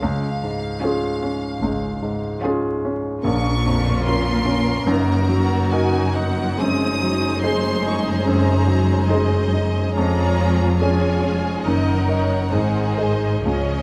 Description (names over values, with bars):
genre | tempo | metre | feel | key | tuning
classical | 62-75 BPM | 4/4 | rubato | Db major | A4 = 445 Hz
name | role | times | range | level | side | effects
clear baby grand piano | melody | 0.0-13.8 s | Bb1 to Eb5 | -24 LUFS | equal | none
rich studio violin section | melody | 0.0-13.8 s | Eb5 to Eb6 | -32 LUFS | equal | none
dark French horn section | sustained chords | 0.0-13.8 s | Ab3 to F4 | -30 LUFS | equal | none
rich studio cello section | bass | 0.0-13.8 s | F2 to Db3 | -28 LUFS | equal | none
rich studio double bass section | bass | 0.0-13.8 s | F1 to Db2 | -26 LUFS | equal | none
rich studio violin section | second line | 0.8-13.8 s | F4 to Eb5 | -30 LUFS | equal | none
rich studio viola section | accompaniment | 0.8-13.8 s | Eb3 to F4 | -30 LUFS | equal | none
room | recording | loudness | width
light reverb | close, detailed microphones, vinyl crackle | -20 LUFS | mono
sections
0.0-13.8 A section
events
none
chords
0.0 Db; 3.2 Bbm; 4.9 Ebm/Gb; 6.6 Ab7/Gb; 10.0 Db/F; 11.6 Ebm/Gb; 12.5 Ab7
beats
| 0.01 0.82 1.62 2.43 | 3.25 4.07 4.88 5.71 | 6.60 7.43 8.26 9.08 | 9.96 10.80 11.65 12.52 | 13.46